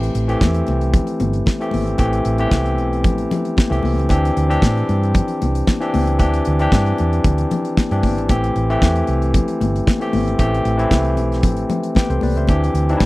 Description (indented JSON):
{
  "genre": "disco",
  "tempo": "114 BPM",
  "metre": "4/4",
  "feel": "straight",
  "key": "unclear",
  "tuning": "A4 = 440 Hz",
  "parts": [
    { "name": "barky tine electric piano", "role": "accompaniment", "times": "0.0-13.1 s", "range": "E3 to G5", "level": "-20 LUFS", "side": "left 1 dB", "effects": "overdrive" },
    { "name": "hollow-body short-scale fingered electric bass", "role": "bass", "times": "0.0-13.1 s", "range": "G1 to A2", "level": "-19 LUFS", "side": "equal", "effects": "none" },
    { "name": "damped 70s drum kit", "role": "drums", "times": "0.0-13.1 s", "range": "hi-hat, kick drum, snare drum", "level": "-16 LUFS", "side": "equal", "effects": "none" },
    { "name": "congas", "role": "percussion", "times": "0.4-13.1 s", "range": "none", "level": "-24 LUFS", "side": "left 4 dB", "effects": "none" }
  ],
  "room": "studio reverb",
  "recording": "dry, close 1970s-style studio recording",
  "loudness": "-15 LUFS",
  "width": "side -19 dB against mid",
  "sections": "0.0-13.1 A section",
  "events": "tine electric piano fill 11.7-12.5",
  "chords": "0.0 Am7; 4.1 D9sus4; 8.3 Am7; 12.5 D9sus4"
}